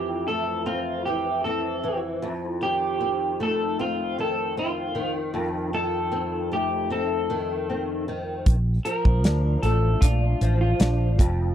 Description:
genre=indie pop, bedroom pop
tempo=77 BPM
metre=4/4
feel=straight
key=F major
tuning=A4 = 440 Hz
part: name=electric guitar through a small old amp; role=melody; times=0.0-11.2 s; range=F4 to Bb4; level=-26 LUFS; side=left 1 dB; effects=lush chorus, slapback echo
part: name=flamenco guitar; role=accompaniment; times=0.0-11.5 s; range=F2 to D4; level=-28 LUFS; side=equal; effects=ensemble chorus, warbly pitch drift
part: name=fretless electric bass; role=bass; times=8.5-11.5 s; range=F1 to D2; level=-21 LUFS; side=equal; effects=none
part: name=damped 70s drum kit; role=drums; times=8.5-11.4 s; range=hi-hat, kick drum, snare drum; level=-19 LUFS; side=equal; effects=none
room=small room reverb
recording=dry, close 1970s-style studio recording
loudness=-22 LUFS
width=side -10 dB against mid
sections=0.0-11.5 A section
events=none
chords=0.0 Fmaj7; 2.2 F7; 8.5 Bbmaj7

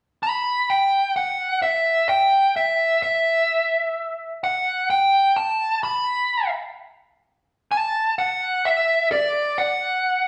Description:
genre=rock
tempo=64 BPM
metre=4/4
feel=straight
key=E minor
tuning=A4 = 440 Hz
part: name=dark smooth lead guitar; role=melody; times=0.2-10.3 s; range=D5 to B5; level=-21 LUFS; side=equal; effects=overdrive
room=wet large studio reverb, RT60 1.0 s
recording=band playing live in one room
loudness=-21 LUFS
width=mono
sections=0.0-10.3 A section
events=none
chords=none

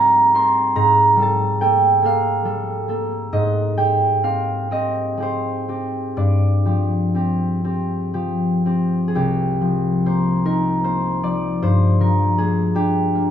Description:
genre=classical, solo harp piece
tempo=38-53 BPM (dotted quarters)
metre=6/8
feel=rubato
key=C minor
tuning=A4 = 444 Hz
part: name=concert harp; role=solo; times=0.0-13.3 s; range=C2 to C6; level=-16 LUFS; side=equal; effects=none
room=wet recital hall reverb, RT60 1.7 s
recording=none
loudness=-16 LUFS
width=side -9 dB against mid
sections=0.0-9.2 A section; 9.2-13.3 B section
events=none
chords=0.0 Abmaj9; 0.8 Gm9/Ab; 3.3 Abmaj7; 6.2 G7sus4; 9.2 Cm11; 11.6 Gm7

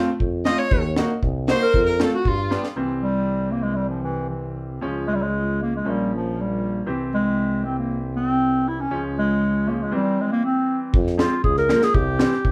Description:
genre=klezmer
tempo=117 BPM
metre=2/4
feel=straight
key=C phrygian dominant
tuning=A4 = 439 Hz
part: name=bright upright piano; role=accompaniment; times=0.0-12.3 s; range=E3 to G4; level=-29 LUFS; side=equal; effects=none
part: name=warm tuba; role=bass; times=0.2-12.5 s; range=Bb1 to G2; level=-30 LUFS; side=equal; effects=none
part: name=deep reggae drum kit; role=drums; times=0.2-2.8, 10.9-12.5 s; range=kick drum, snare drum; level=-25 LUFS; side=equal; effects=none
part: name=warm clarinet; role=melody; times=0.5-12.5 s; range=E3 to Eb5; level=-24 LUFS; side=equal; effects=none
part: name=clear violin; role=second line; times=0.5-2.6 s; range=F4 to Eb5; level=-31 LUFS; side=equal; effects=none
room=wet small room reverb, RT60 0.5 s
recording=heard from further back in the room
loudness=-22 LUFS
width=mono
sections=0.0-2.8 A section; 2.8-10.9 B section; 10.9-12.5 C section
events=drum fill 2.5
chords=0.0 F; 0.7 Ebm; 1.7 F; 2.3 G7; 2.8 C; 4.8 Db; 5.8 Bbm; 6.9 C; 8.9 Db; 9.9 C; 10.9 Fm; 11.9 C

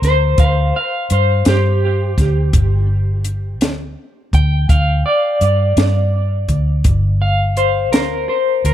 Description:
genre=slow blues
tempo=56 BPM (dotted quarters)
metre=12/8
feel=straight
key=G minor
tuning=A4 = 440 Hz
part: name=electric guitar through a small old amp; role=second line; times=0.0-8.7 s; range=G4 to G5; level=-18 LUFS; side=left 1 dB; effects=tremolo, tape echo
part: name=vintage muted fingered electric bass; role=bass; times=0.0-8.7 s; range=G1 to G2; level=-15 LUFS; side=equal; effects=none
part: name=compact cocktail drum kit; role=drums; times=0.0-8.7 s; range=hi-hat, kick drum, snare drum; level=-16 LUFS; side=equal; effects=none
room=little or no reverb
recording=echo-heavy mix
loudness=-13 LUFS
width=side -11 dB against mid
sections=0.0-8.7 A section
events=clean electric guitar solo 0.0-8.7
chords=0.0 G5

